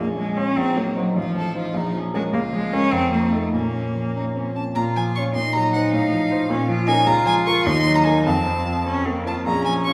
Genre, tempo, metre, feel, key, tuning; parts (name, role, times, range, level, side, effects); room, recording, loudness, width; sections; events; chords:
quick classical-period movement for piano trio; 101 BPM (dotted quarters); 6/8; straight; Bb minor; A4 = 438 Hz
rich violin; melody; 0.0-9.9 s; Db4 to Db6; -27 LUFS; equal
clear cello; second line; 0.0-9.9 s; F3 to F4; -25 LUFS; equal
warm baby grand piano; accompaniment; 0.0-9.9 s; A1 to Db5; -25 LUFS; equal
wet recital hall reverb, RT60 1.5 s; recorded in a church or concert hall; -21 LUFS; mono
0.0-4.8 A section; 4.8-9.9 A section
0.0 Bbm; 0.6 Cm7b5/Bb; 1.2 F7/A; 1.7 Bbm; 2.3 Bbm/Db; 2.9 F7; 3.5 Bbm; 5.3 Cm7b5/Bb; 5.9 F7/A; 6.5 Bbm; 7.1 Bbm/Db; 7.7 Ebm; 8.3 F